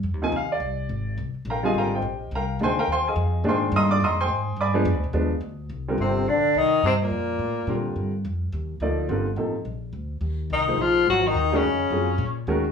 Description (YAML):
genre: jazz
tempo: 212 BPM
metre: 4/4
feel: swing 60% on 8ths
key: F dorian, C dorian from 5.7 s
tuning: A4 = 441 Hz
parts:
  - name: upright bass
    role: bass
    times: 0.0-12.7 s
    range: G1 to Bb2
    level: -27 LUFS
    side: equal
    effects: none
  - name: warm upright piano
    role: accompaniment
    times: 0.2-12.6 s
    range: Bb2 to Eb6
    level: -24 LUFS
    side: equal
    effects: none
  - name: warm tenor saxophone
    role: melody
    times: 6.0-7.8, 10.5-12.4 s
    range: Bb3 to Gb4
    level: -22 LUFS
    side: left 2 dB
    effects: none
  - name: bright trombone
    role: second line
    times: 6.0-7.8, 10.5-12.4 s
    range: Bb2 to Gb3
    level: -27 LUFS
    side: left 6 dB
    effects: none
room: moderate studio reverb, RT60 0.7 s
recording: studio reverb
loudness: -21 LUFS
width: side -6 dB against mid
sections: 0.0-5.7 A section; 5.7-12.7 B section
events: none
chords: 0.0 Fm11; 4.6 G7b9; 5.7 Cm11; 10.2 Ebm11